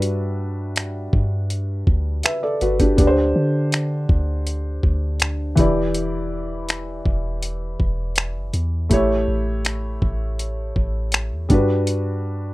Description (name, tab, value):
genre	contemporary R&B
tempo	81 BPM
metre	4/4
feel	straight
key	unclear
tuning	A4 = 440 Hz
part	felt-muted upright piano	accompaniment	0.0-12.5 s	D3 to E5	-23 LUFS	equal	none
part	soft 808-style bass	bass	0.0-12.5 s	E1 to D3	-23 LUFS	equal	none
part	dusty soul sampler-style drum kit	drums	0.0-12.0 s	finger snaps, hi-hat, kick drum	-19 LUFS	equal	none
room	little or no reverb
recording	rough home demo mix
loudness	-19 LUFS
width	side -19 dB against mid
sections	0.0-12.5 A section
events	none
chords	0.0 Gmaj7; 3.0 D7sus4; 5.6 Em7; 8.9 A7; 11.5 Gmaj7